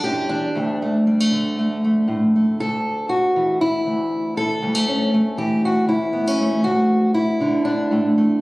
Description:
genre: folk, solo fingerstyle acoustic guitar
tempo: 119 BPM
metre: 4/4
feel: straight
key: unclear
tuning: A4 = 439 Hz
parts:
  - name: fingerpicked steel-string acoustic guitar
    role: solo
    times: 0.0-8.4 s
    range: D2 to A4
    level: -17 LUFS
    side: equal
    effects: none
room: wet recital hall reverb, RT60 1.6 s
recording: recorded on a phone in the room, studio reverb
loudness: -17 LUFS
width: side -20 dB against mid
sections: 0.0-2.6 A section; 2.6-8.4 B section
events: none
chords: 0.0 Em7; 0.6 D5; 2.6 A/D; 6.6 D

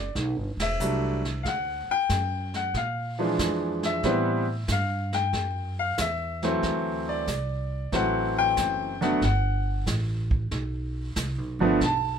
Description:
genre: jazz piano trio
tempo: 93 BPM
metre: 4/4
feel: swing 68% on 8ths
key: G major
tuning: A4 = 442 Hz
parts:
  - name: clear grand piano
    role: melody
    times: 0.0-12.2 s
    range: D3 to A5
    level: -25 LUFS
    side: left 1 dB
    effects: none
  - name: upright bass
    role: bass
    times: 0.0-12.2 s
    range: E1 to Bb2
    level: -30 LUFS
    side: right 1 dB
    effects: none
  - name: vintage brush drum kit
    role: drums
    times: 0.2-12.2 s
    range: brushed snare drum, hi-hat, kick drum, ride cymbal, snare drum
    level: -31 LUFS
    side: right 2 dB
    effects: none
room: moderate club reverb, RT60 0.6 s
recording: minimal, uncompressed stereo recording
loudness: -24 LUFS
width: side -7 dB against mid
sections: 0.0-12.2 A section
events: band accent 0.5-0.8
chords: 0.0 Em11; 1.5 Dadd11; 2.7 Bb7#11; 4.0 Am7; 6.6 D7; 9.2 Gmaj7

